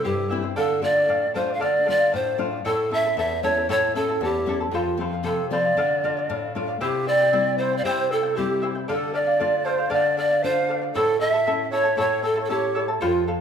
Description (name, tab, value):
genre	andean folk, Andean ensemble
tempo	116 BPM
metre	2/4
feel	straight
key	D minor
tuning	A4 = 440 Hz
part	mellow pan flute	melody	0.0-13.2 s	F4 to F5	-22 LUFS	right 1 dB	none
part	charango	accompaniment	0.0-13.4 s	E4 to A5	-28 LUFS	left 2 dB	none
part	nylon-string guitar	accompaniment	0.0-13.4 s	E2 to F4	-30 LUFS	left 5 dB	none
part	breathy large quena	second line	6.8-13.2 s	F4 to G5	-28 LUFS	right 4 dB	none
room	moderate concert hall reverb, RT60 2.0 s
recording	minimal, uncompressed stereo recording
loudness	-20 LUFS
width	side -7 dB against mid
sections	0.0-6.8 A section; 6.8-13.4 A section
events	none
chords	0.0 C; 0.6 Dm; 2.6 A; 4.7 F; 5.8 Dm; 6.8 C; 8.9 Dm; 10.9 A